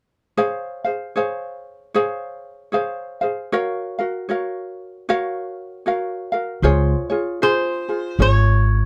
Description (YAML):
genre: Hawaiian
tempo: 77 BPM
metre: 4/4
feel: swing 60% on 8ths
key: Db major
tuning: A4 = 440 Hz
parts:
  - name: ukulele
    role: accompaniment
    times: 0.4-8.9 s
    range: F4 to F5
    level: -24 LUFS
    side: equal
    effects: none
  - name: upright bass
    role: bass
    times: 6.6-8.9 s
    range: Ab1 to Db2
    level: -18 LUFS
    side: equal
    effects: none
  - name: lap resonator guitar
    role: melody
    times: 7.4-8.8 s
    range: C5 to Db5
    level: -23 LUFS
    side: equal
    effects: none
room: moderate booth ambience, RT60 0.2 s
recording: none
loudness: -22 LUFS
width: mono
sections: 0.4-6.6 A section; 6.6-8.9 B section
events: none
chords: 0.4 Dbmaj7; 3.5 Gbmaj7; 6.6 Dbmaj7